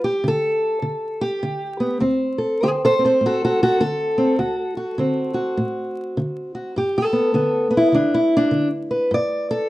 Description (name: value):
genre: acoustic country blues, solo or duo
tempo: 101 BPM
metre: 4/4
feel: swing 62% on 8ths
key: D mixolydian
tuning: A4 = 441 Hz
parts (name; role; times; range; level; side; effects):
- fingerpicked acoustic archtop guitar; solo; 0.0-9.7 s; D2 to D5; -18 LUFS; equal; none
room: moderate studio reverb, RT60 0.6 s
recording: dark, warm production, vinyl crackle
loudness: -18 LUFS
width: side -17 dB against mid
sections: 0.0-9.7 A section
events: steel-string acoustic guitar solo 0.0-9.7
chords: 0.0 G5; 2.0 D7; 6.8 G